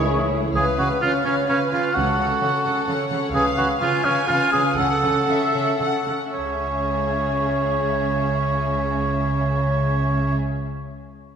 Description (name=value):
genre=quick classical-period movement for symphony orchestra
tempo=109-130 BPM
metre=3/4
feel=straight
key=C# minor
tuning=A4 = 440 Hz
part: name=warm studio violin section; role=melody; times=0.0-10.4 s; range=E5 to F#5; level=-32 LUFS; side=left 5 dB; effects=none
part: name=rich studio violin section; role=second line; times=0.0-10.4 s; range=C#4 to G#5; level=-30 LUFS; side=left 3 dB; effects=none
part: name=warm cor anglais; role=second line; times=0.0-10.4 s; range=C#4 to C#5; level=-22 LUFS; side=right 1 dB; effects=none
part: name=dark bassoon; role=accompaniment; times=0.0-0.5 s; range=A2 to C#3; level=-32 LUFS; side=right 2 dB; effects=none
part: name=rich studio viola section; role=accompaniment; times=0.0-10.4 s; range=E3 to B4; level=-28 LUFS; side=equal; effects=none
part: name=rich studio double bass section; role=bass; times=0.0-10.4 s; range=C#2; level=-27 LUFS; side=right 2 dB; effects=none
part: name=warm studio cello section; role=bass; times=0.0-10.4 s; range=C#3 to E4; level=-27 LUFS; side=right 2 dB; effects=none
room=wet concert hall reverb, RT60 2.6 s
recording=minimal, uncompressed stereo recording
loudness=-19 LUFS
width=side -7 dB against mid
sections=0.5-6.3 A section; 6.3-9.6 B section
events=slowing down 2.6-6.3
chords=0.0 C#m; 0.5 C#7; 1.9 F#m/C#; 3.3 C#7; 4.8 F#m/C#; 6.3 C#m